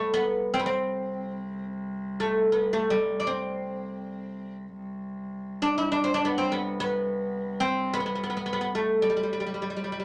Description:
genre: Turkish makam ensemble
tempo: free time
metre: none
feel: none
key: unclear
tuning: A4 = 440 Hz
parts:
  - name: oud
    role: melody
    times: 0.0-10.0 s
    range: G3 to E4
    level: -28 LUFS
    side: equal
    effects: none
  - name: warm cello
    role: drone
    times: 0.0-10.0 s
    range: C2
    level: -38 LUFS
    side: equal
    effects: none
room: moderate studio reverb, RT60 0.5 s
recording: none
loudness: -28 LUFS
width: mono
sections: 0.0-10.0 A section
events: none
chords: none

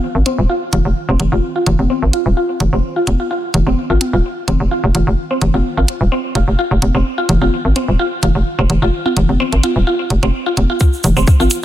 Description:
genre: minimal techno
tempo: 128 BPM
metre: 4/4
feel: swing 53% on 16ths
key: F minor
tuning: A4 = 440 Hz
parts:
  - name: hollow knocking FM bass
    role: bass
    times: 0.1-11.5 s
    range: Eb1 to Ab1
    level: -14 LUFS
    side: equal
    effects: sidechain pumping
  - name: mallet-like synth pluck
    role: riff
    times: 0.3-11.4 s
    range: C4 to F4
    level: -19 LUFS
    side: equal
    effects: lush chorus, sidechain pumping, ping-pong delay
  - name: electronic hi-hat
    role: drums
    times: 0.3-11.6 s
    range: none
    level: -21 LUFS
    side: right 1 dB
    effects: overdrive
  - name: electronic toms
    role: percussion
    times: 0.3-11.5 s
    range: none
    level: -22 LUFS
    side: equal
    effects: overdrive, dub echo
  - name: electronic kick drum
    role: drums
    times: 10.8-11.4 s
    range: none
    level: -10 LUFS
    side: equal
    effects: overdrive
  - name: tube shaker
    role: percussion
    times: 10.8-11.6 s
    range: none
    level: -23 LUFS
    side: right 2 dB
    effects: none
room: light reverb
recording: dense, heavily limited modern master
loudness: -13 LUFS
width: side -12 dB against mid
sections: 0.0-10.8 A section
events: filter sweep on synth arpeggio sound 0.0-10.8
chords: 0.0 N.C.; 10.8 Fm

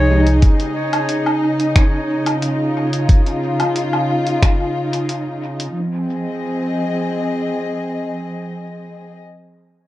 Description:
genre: ambient dub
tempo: 90 BPM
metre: 4/4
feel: straight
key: F minor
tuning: A4 = 440 Hz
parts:
  - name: dark chamber string section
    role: sustained chords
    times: 0.0-9.2 s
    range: Db3 to Eb5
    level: -19 LUFS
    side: equal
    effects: none
  - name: lo-fi sampler-style drum kit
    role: drums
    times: 0.3-5.7 s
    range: finger snaps, hi-hat, woodblock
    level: -24 LUFS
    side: equal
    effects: dub echo
  - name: electronic kick drum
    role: drums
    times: 0.4-4.6 s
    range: none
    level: -12 LUFS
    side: equal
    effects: none
room: light reverb, digital ambience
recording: dark, warm production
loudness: -16 LUFS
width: side -15 dB against mid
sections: 0.0-5.8 A section; 5.8-8.4 B section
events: none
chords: 0.4 Dbadd9; 5.8 Fm7

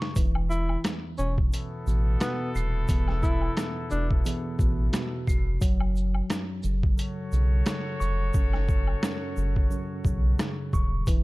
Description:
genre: hip hop, boom-bap hip-hop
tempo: 88 BPM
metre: 4/4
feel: swing 57% on 16ths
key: F# minor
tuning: A4 = 442 Hz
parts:
  - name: mellow tine electric piano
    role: accompaniment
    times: 0.0-11.2 s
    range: E2 to B#6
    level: -33 LUFS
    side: right 1 dB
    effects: medium stereo tremolo, cassette tape, high-pass filter, low-pass filter
  - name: boom bap sampler-style drum kit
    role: drums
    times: 0.0-11.2 s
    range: hi-hat, kick drum, rim click, shaker, snare drum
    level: -26 LUFS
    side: equal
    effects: none
  - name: warm sub bass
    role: bass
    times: 0.2-11.2 s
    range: D#1 to B1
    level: -26 LUFS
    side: equal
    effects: none
  - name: egg shaker and woodblock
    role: percussion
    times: 0.2-11.2 s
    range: none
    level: -42 LUFS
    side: left 2 dB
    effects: none
  - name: breathy tenor saxophone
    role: melody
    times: 0.5-4.1 s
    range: B3 to E4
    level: -33 LUFS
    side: equal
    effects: high-pass filter, low-pass filter, ping-pong delay
  - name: clear trumpet section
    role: stabs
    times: 1.5-10.7 s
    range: B3 to C#5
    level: -37 LUFS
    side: left 2 dB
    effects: high-pass filter, low-pass filter, ping-pong delay
room: digital ambience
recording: dark, warm production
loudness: -24 LUFS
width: side -21 dB against mid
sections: 0.2-11.2 A section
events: break 0.0; drum fill 0.0; hi-hats muted 8.3-11.1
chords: 0.2 Esus4; 5.6 F#m

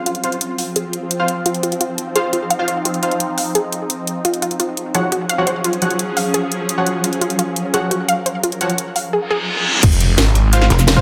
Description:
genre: dark technical drum and bass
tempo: 172 BPM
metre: 4/4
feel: straight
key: F phrygian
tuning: A4 = 440 Hz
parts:
  - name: swarming drone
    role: sustained chords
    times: 0.0-11.0 s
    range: F3 to Bb4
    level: -26 LUFS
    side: equal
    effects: built-in reverb, phaser, sidechain pumping
  - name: analog pluck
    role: arpeggios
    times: 0.1-9.4 s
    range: F4 to F5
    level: -24 LUFS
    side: equal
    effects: chorus, sidechain pumping, delay
  - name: drum and bass drum kit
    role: drums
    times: 0.1-10.9 s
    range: crash cymbal, hi-hat, shaker, snare drum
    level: -22 LUFS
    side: equal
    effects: overdrive, studio reverb
  - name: orchestra-hit-like synth stab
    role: stabs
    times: 0.2-11.0 s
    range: F3 to Gb5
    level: -24 LUFS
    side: equal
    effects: built-in reverb, delay
  - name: reverse cymbal and impact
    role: sound effects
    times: 9.2-11.0 s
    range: none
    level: -23 LUFS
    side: equal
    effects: none
  - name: snarling distorted saw bass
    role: bass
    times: 9.8-10.7 s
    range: F1 to Ab1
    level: -16 LUFS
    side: equal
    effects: distortion, sidechain pumping
  - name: crunchy breakbeat drum kit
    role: drums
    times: 9.8-11.0 s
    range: hi-hat, snare drum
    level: -31 LUFS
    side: equal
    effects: none
  - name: electronic kick drum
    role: drums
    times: 9.8-11.0 s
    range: none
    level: -14 LUFS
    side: equal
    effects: overdrive, studio reverb
  - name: pulsing pluck wobble bass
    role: bass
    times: 10.7-11.0 s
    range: F1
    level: -15 LUFS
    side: equal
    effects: chorus
room: moderate plate reverb, RT60 2.0 s, digital ambience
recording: none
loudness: -18 LUFS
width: mono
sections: 0.0-9.8 A section; 9.8-11.0 B section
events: filter sweep on synth arpeggio sound 0.0-9.8; reverse cymbal 9.2-9.8; drop 9.8-11.0; impact 9.8-11.0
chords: 0.0 F5; 4.2 Gbadd9/F; 9.8 Fm

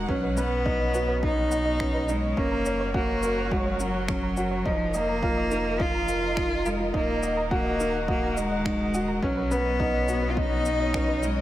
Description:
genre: piano and strings electronica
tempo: 105 BPM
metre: 4/4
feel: straight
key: unclear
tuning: A4 = 438 Hz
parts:
  - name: rich cello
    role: melody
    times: 0.0-11.4 s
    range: F3 to F4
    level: -27 LUFS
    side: equal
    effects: shimmer reverb
  - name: dark studio string section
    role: sustained chords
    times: 0.0-11.4 s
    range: B2 to Gb5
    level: -35 LUFS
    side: equal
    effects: sidechain pumping, shimmer reverb
  - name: clear upright piano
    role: riff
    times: 0.0-11.4 s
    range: C#4 to Eb5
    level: -29 LUFS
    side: equal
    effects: shimmer reverb
  - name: warm sub bass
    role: bass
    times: 0.0-11.4 s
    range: Eb1 to B1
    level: -32 LUFS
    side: equal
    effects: sidechain pumping
  - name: soft round pluck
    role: arpeggios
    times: 0.1-11.3 s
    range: C#4 to Eb6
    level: -37 LUFS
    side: right 2 dB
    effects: none
  - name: electronic kick drum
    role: drums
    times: 0.1-11.1 s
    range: none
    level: -31 LUFS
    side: equal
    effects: studio reverb
  - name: electronic shaker and finger snaps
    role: drums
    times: 0.4-11.3 s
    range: none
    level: -38 LUFS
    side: left 1 dB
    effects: studio reverb
room: moderate concert hall reverb, RT60 1.9 s, small room ambience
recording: none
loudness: -23 LUFS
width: side -14 dB against mid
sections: 0.0-11.4 A section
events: none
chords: 0.1 Badd9; 2.4 Gb; 4.7 Bbsus4/F; 6.9 Ebm; 9.2 Badd9

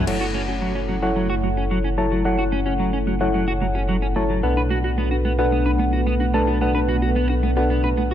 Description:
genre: synthwave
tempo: 110 BPM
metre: 4/4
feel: straight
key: unclear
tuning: A4 = 441 Hz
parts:
  - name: chorused pulse-width pad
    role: sustained chords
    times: 0.0-8.1 s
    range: A3 to G#5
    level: -27 LUFS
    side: right 3 dB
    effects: none
  - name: clean electric guitar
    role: riff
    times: 0.0-8.1 s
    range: F#3 to B4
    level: -27 LUFS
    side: right 2 dB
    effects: analog chorus, low-pass filter, ping-pong delay
  - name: mellow FM electric piano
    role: stabs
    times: 0.0-8.1 s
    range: D4 to A5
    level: -24 LUFS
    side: left 2 dB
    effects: chorus, low-pass filter, ping-pong delay
  - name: dark detuned saw bass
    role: bass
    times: 0.0-8.1 s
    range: F#1 to B1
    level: -23 LUFS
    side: equal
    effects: none
  - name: warbly dusty pluck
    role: arpeggios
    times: 0.1-8.1 s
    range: A3 to F#4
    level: -31 LUFS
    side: right 2 dB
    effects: none
room: light reverb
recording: none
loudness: -18 LUFS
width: side -10 dB against mid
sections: 0.1-8.1 A section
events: filter sweep on analog synth pad 0.1-8.1; filter sweep on FM electric piano 0.1-8.1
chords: 0.1 F#m7; 4.4 Bm7

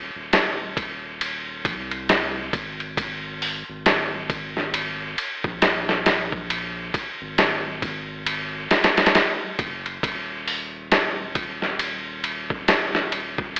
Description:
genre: trip hop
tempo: 68 BPM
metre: 4/4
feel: swing 60% on 16ths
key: unclear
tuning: A4 = 440 Hz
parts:
  - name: soft dub sub bass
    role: bass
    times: 0.0-13.6 s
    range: Eb1 to C2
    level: -40 LUFS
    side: equal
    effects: tube saturation
  - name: dusty soul sampler-style drum kit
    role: drums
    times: 0.3-13.6 s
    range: hi-hat, kick drum, ride cymbal, snare drum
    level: -24 LUFS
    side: equal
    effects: none
room: light reverb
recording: dry, gritty hardware recording, cassette tape, AM radio sound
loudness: -24 LUFS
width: mono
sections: 0.0-13.6 A section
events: none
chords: none

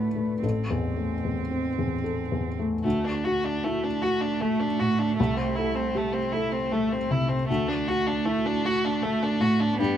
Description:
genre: neoclassical piano and strings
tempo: 77 BPM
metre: 3/4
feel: uneven beats, rubato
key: unclear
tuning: A4 = 440 Hz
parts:
  - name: rich cello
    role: second line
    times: 0.0-10.0 s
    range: A3 to C4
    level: -31 LUFS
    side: right 10 dB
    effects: none
  - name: felt-muted upright piano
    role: accompaniment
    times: 0.0-10.0 s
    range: A1 to F#5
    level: -26 LUFS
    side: left 2 dB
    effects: none
  - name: rich violin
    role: melody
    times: 2.8-10.0 s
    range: G3 to F#4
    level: -28 LUFS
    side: left 2 dB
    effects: none
room: light reverb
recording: none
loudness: -24 LUFS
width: side -10 dB against mid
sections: 0.0-2.8 A section; 2.8-10.0 B section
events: none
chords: 0.4 Am; 2.8 D; 5.2 Am/C; 7.5 D

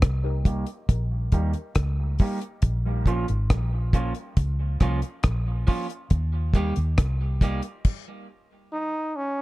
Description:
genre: dub reggae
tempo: 69 BPM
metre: 4/4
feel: straight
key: unclear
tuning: A4 = 444 Hz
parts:
  - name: vintage muted fingered electric bass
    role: bass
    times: 0.0-7.6 s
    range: Ab1 to Eb2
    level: -25 LUFS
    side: equal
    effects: none
  - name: deep reggae drum kit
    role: drums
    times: 0.0-8.1 s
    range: crash cymbal, hi-hat, kick drum, rim click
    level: -21 LUFS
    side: equal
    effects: none
  - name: electric guitar at the edge of break-up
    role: accompaniment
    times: 0.5-7.6 s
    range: F3 to G4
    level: -32 LUFS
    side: right 3 dB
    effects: high-pass filter, low-pass filter, tape echo
  - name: brilliant trombone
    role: melody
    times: 8.7-9.4 s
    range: Db4 to Eb4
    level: -26 LUFS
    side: equal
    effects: none
room: small room reverb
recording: dark, warm production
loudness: -22 LUFS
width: side -19 dB against mid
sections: 0.0-9.4 A section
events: filter sweep on clean electric guitar 0.0-9.4; stop 7.8-9.4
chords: 0.0 Eb; 2.6 Bbm; 6.1 Eb

